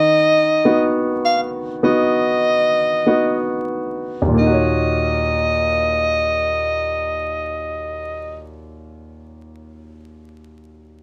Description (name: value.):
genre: pop.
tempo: 45-53 BPM.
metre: 4/4.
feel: straight.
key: Eb minor.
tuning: A4 = 440 Hz.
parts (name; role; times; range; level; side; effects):
clear soprano saxophone; melody; 0.0-8.4 s; D#5 to F5; -20 LUFS; equal; slapback echo.
clear concert grand piano; accompaniment; 0.0-11.0 s; Eb2 to Db5; -22 LUFS; equal; none.
room: light reverb.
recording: dry, close 1970s-style studio recording, vinyl crackle.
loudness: -18 LUFS.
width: mono.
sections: 0.0-4.4 A section; 4.4-9.6 B section.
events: slowing down 0.0-4.4.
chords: 0.0 B/D#; 4.4 Ebm7.